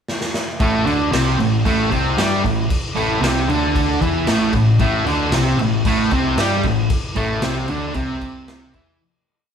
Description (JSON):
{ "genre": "garage rock duo or trio", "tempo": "114 BPM", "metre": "4/4", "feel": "straight", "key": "unclear", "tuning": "A4 = 440 Hz", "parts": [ { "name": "raw garage drum kit", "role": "drums", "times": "0.1-8.9 s", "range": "crash cymbal, kick drum, snare drum", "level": "-22 LUFS", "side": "equal", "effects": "none" }, { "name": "fuzz guitar", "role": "riff", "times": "0.6-9.0 s", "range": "A2 to G4", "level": "-18 LUFS", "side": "equal", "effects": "distortion" }, { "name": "growling picked electric bass", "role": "bass", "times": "0.6-9.0 s", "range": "A1 to G2", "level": "-24 LUFS", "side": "left 1 dB", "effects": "overdrive" } ], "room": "moderate large studio reverb, RT60 0.9 s", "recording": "band playing live in one room", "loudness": "-16 LUFS", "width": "side -7 dB against mid", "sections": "0.0-0.6 pickup bar; 0.6-9.0 riff", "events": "drum fill 0.1-0.6; fade-out 6.9-9.0", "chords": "0.0 N.C.; 0.6 A5" }